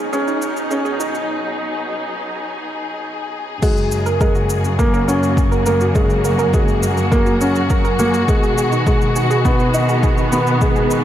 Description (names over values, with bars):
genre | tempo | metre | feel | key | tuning
piano and strings electronica | 103 BPM | 4/4 | straight | F# major | A4 = 443 Hz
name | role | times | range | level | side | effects
muted studio string section | sustained chords | 0.0-11.0 s | B2 to G#4 | -21 LUFS | left 1 dB | sidechain pumping, shimmer reverb
soft round pluck | arpeggios | 0.0-10.9 s | D#4 to A#4 | -24 LUFS | right 5 dB | chorus, sidechain pumping, digital delay, shimmer reverb
warm studio cello section | bass | 0.0-11.0 s | F#2 to B2 | -21 LUFS | equal | sidechain pumping, high-pass filter
warm upright piano | riff | 0.1-11.0 s | G#3 to D#4 | -20 LUFS | equal | digital delay, shimmer reverb
electronic shaker and crash cymbal | drums | 0.1-11.0 s | none | -32 LUFS | equal | overdrive, small room ambience
electronic kick drum | drums | 3.6-10.7 s | none | -18 LUFS | equal | overdrive, small room ambience
room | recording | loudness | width
moderate scoring stage reverb, RT60 1.9 s, small room ambience | dark, warm production, high-pass filter | -15 LUFS | side -11 dB against mid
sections
0.0-3.6 A section; 3.6-11.0 B section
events
build-up 0.0-3.6; filter sweep on synth arpeggio sound 0.0-3.6; filter sweep 0.0-3.6; break 1.3-3.6; drop 3.6-11.0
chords
0.0 G#m7; 3.6 F#add9; 8.3 B6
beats
0.13 0.71 | 1.29 1.88 2.46 3.04 | 3.62 4.21 4.79 5.37 | 5.96 6.54 7.12 7.70 | 8.29 8.87 9.45 10.03 | 10.62